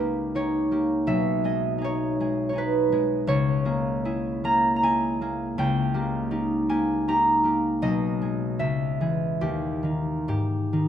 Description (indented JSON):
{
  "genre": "classical, solo harp piece",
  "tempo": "67-84 BPM",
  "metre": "3/4",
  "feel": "rubato",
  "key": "G# minor",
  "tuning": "A4 = 439 Hz",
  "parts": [
    { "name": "concert harp", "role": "solo", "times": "0.0-10.9 s", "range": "B1 to A#5", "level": "-22 LUFS", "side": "equal", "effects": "none" }
  ],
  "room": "moderate scoring stage reverb, RT60 1.9 s",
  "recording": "close, detailed microphones",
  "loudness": "-22 LUFS",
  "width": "side -9 dB against mid",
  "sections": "0.0-10.9 A section",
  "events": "none",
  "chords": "0.0 D#7/C#; 1.1 G#m/B; 3.3 A#m7b5/C#; 5.6 D#7/C#; 7.8 G#m/B; 8.6 C#m; 9.4 N.C.; 10.3 G#5"
}